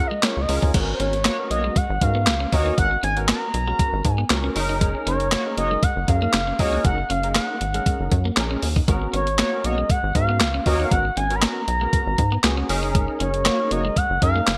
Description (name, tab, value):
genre	early-eighties boogie funk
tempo	118 BPM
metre	4/4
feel	straight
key	G# dorian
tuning	A4 = 436 Hz
part	expressive synth lead	melody	0.0-14.6 s	B#4 to B5	-27 LUFS	equal	chorus
part	barky tine electric piano	accompaniment	0.0-14.5 s	B3 to A#4	-32 LUFS	equal	ensemble chorus
part	clean electric guitar	riff	0.1-14.4 s	G#3 to D#4	-35 LUFS	equal	lush chorus
part	clean 12-bit digital drum machine	drums	0.2-14.6 s	crash cymbal, handclaps, hi-hat, kick drum, snare drum	-24 LUFS	equal	gated reverb
part	rubbery square bass	bass	0.4-14.6 s	F#1 to G#2	-27 LUFS	equal	none
part	analog synth brass	second line	1.3-13.8 s	A#3 to C#5	-32 LUFS	equal	chorus
room	light reverb, digital ambience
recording	bright 1980s-style digital production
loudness	-21 LUFS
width	mono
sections	0.7-14.6 A section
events	none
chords	0.0 F#maj9; 0.7 G#m11; 4.6 F#6; 8.9 G#m11; 12.7 F#6